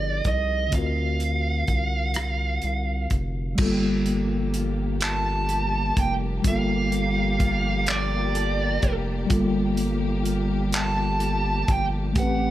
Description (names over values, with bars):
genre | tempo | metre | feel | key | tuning
slow six-eight R&B | 42 BPM (dotted quarters) | 6/8 | straight | G minor from 3.6 s | A4 = 441 Hz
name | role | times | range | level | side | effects
fuzz lead guitar | melody | 0.0-12.5 s | D5 to A5 | -27 LUFS | right 2 dB | distortion
mellow tine electric piano | accompaniment | 0.0-12.5 s | D3 to B4 | -28 LUFS | left 2 dB | medium stereo tremolo
round analog bass | bass | 0.0-12.5 s | E#1 to D2 | -27 LUFS | equal | none
warm soul drum kit | drums | 0.2-12.4 s | crash cymbal, handclaps, hi-hat, kick drum, rim click | -26 LUFS | equal | none
mellow electric guitar | second line | 3.6-12.5 s | G3 to A4 | -32 LUFS | right 4 dB | lush chorus
dark studio string section | sustained chords | 3.6-12.5 s | C3 to B4 | -36 LUFS | left 2 dB | none
room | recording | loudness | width
light reverb, small room ambience | none | -22 LUFS | side -14 dB against mid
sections
0.0-3.6 A section; 3.6-12.5 B section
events
none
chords
0.0 Fm11; 0.7 D7alt; 3.6 Gm9